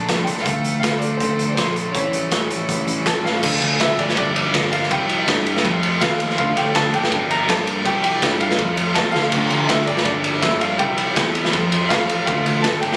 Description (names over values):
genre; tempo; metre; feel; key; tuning
indie rock; 163 BPM; 4/4; straight; D minor; A4 = 439 Hz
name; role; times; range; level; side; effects
clear upright piano; melody; 0.0-13.0 s; C5 to Bb5; -27 LUFS; equal; digital delay
electric guitar through a small old amp; riff; 0.0-13.0 s; F2 to F4; -34 LUFS; equal; none
fuzz guitar; riff; 0.0-13.0 s; E3 to A4; -29 LUFS; equal; distortion
growling picked electric bass; bass; 0.0-13.0 s; G1 to G2; -27 LUFS; equal; overdrive
raw garage drum kit; drums; 0.1-13.0 s; crash cymbal, hi-hat, kick drum, ride cymbal, snare drum; -22 LUFS; equal; none
overdriven tine electric piano; second line; 3.1-13.0 s; D4 to Bb4; -36 LUFS; equal; none
tonewheel organ; sustained chords; 3.4-13.0 s; Bb3 to D6; -37 LUFS; equal; none
room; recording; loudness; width
light reverb; recorded on a phone in the room, club reverb, compression; -19 LUFS; mono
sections
0.0-3.4 A section; 3.4-13.0 B section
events
drum fill 3.2, 9.1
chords
0.0 Bbmaj7; 1.9 A7; 3.4 Dm7; 4.0 Gm; 4.9 Cadd9; 5.6 F; 6.4 Dm7; 6.9 Gm; 7.9 Cadd9; 8.6 F; 9.3 Dm7; 9.9 Gm; 10.8 Cadd9; 11.5 F; 12.3 Dm7